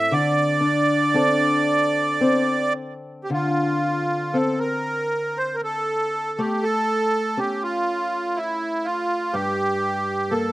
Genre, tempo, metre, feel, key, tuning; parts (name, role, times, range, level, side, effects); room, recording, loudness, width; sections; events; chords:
celtic folk, Celtic slow air; 53-62 BPM; 3/4; rubato; D minor; A4 = 440 Hz
accordion; melody; 0.0-10.5 s; E4 to E5; -21 LUFS; right 2 dB; light tremolo tuning, slapback echo
fingerpicked steel-string acoustic guitar; accompaniment; 0.0-10.5 s; G2 to A4; -24 LUFS; left 2 dB
little or no reverb; recorded outdoors, with no room sound; -20 LUFS; side -16 dB against mid
0.0-3.3 A section; 3.3-10.5 B section
0.1 D5; 3.3 Dm7; 6.4 A; 9.3 Gm